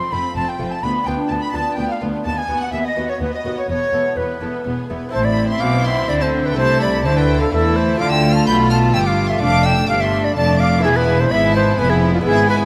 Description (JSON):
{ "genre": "classical, baroque-style concerto movement with solo episodes", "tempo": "126 BPM", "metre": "3/4", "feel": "straight", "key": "A minor", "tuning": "A4 = 440 Hz", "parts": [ { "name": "concert flute", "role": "melody", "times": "0.0-12.6 s", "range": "F4 to C6", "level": "-22 LUFS", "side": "equal", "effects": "none" }, { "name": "warm chamber violin section", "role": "melody", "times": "0.0-12.7 s", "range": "F4 to G6", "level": "-30 LUFS", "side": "equal", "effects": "none" }, { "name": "lute", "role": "accompaniment", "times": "0.0-12.7 s", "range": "D2 to C5", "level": "-29 LUFS", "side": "equal", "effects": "none" }, { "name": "rich studio viola section", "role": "accompaniment", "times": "0.0-12.7 s", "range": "A3 to C4", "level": "-27 LUFS", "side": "equal", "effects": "none" }, { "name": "rich chamber violin section", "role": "second line", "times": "0.1-12.7 s", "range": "D4 to B5", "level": "-28 LUFS", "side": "equal", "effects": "none" }, { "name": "clear chamber cello section", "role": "bass", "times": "0.1-12.7 s", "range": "D2 to E3", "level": "-25 LUFS", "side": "equal", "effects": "none" }, { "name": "rich chamber double bass section", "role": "bass", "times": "0.1-12.7 s", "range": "E1 to E2", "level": "-25 LUFS", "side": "equal", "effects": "none" } ], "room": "wet concert hall reverb, RT60 2.6 s", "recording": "none", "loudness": "-17 LUFS", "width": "mono", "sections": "0.0-5.1 A section; 5.1-12.7 B section", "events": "none", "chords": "0.0 F; 0.8 Bdim/D; 2.3 B/D#; 3.7 Esus4; 4.7 E; 5.1 Am; 6.6 Am/C; 8.0 Dm; 9.4 Dm/F; 10.8 E" }